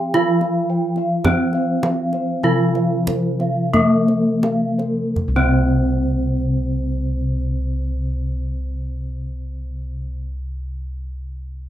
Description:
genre	Javanese gamelan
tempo	40-57 BPM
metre	4/4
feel	straight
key	unclear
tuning	A4 = 440 Hz
part	gamelan-type bronze metallophone	melody	0.0-10.2 s	Bb3-45c to G4+25c	-21 LUFS	equal	none
part	gamelan-type bronze metallophone	accompaniment	0.0-10.2 s	C3 to C4	-24 LUFS	left 1 dB	none
part	gamelan-type bossed gongs	arpeggios	0.0-10.2 s	Bb4-45c to F5-35c	-29 LUFS	left 3 dB	none
part	gamelan-type bronze metallophone	arpeggios	0.0-10.2 s	Bb4-45c to G5+25c	-28 LUFS	right 3 dB	none
part	gamelan-type bossed gongs	bass	0.0-10.2 s	C2 to F4-35c	-24 LUFS	equal	none
part	kendang	percussion	0.1-5.9 s	none	-24 LUFS	right 1 dB	none
room	wet studio reverb, RT60 0.5 s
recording	rough home demo mix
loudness	-17 LUFS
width	side -12 dB against mid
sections	0.0-5.2 A section; 5.2-11.1 B section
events	slowing down 0.0-5.2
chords	none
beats	| 0.16 1.26 2.45 3.75 | 5.17 6.66 8.16 9.65

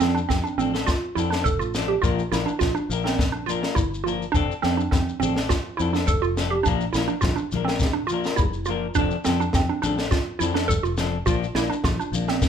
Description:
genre	highlife guitar band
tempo	104 BPM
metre	4/4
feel	straight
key	F major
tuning	A4 = 440 Hz
part	semi-hollow electric guitar	accompaniment	0.0-12.5 s	F3 to Bb4	-28 LUFS	left 8 dB	none
part	hollow square pluck	arpeggios	0.0-12.5 s	C4 to A4	-25 LUFS	right 6 dB	chorus
part	fingered electric bass	bass	0.0-12.5 s	F1 to F2	-29 LUFS	left 1 dB	none
part	compact cocktail drum kit	drums	0.0-12.5 s	kick drum, snare drum	-26 LUFS	left 1 dB	none
part	shekere	percussion	0.0-12.5 s	none	-31 LUFS	left 3 dB	none
part	congas	percussion	4.4-12.5 s	none	-34 LUFS	left 2 dB	none
room	moderate large studio reverb, RT60 0.8 s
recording	band playing live in one room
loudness	-21 LUFS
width	side -8 dB against mid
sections	0.0-12.5 A section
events	none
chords	0.0 F6; 2.0 Bb; 4.3 F6; 6.7 Bb; 9.0 F6; 11.3 Bb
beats	0.30 0.88 1.45 | 2.03 2.61 3.19 3.77 | 4.34 4.92 5.50 6.08 | 6.66 7.23 7.81 8.39 | 8.96 9.54 10.12 10.70 | 11.27 11.85 12.42

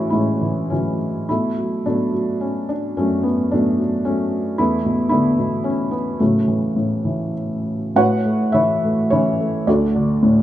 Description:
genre	classical, lyrical solo piano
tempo	97-117 BPM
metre	3/4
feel	rubato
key	A major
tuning	A4 = 439 Hz
part	felt-muted upright piano	solo	0.0-10.4 s	D2 to F#5	-17 LUFS	equal	none
room	wet recital hall reverb, RT60 1.5 s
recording	minimal, uncompressed stereo recording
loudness	-17 LUFS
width	side -12 dB against mid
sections	0.0-8.0 A section; 8.0-10.4 B section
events	none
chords	0.0 F#m9/A; 1.3 Bm7; 4.6 E7sus4; 6.2 A6; 8.0 Aadd9; 9.7 D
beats	0.13 0.71 | 1.29 1.86 2.42 | 2.98 3.52 4.06 | 4.59 5.12 5.66 | 6.21 6.77 7.36 | 7.96 8.54 9.11 | 9.68 10.22

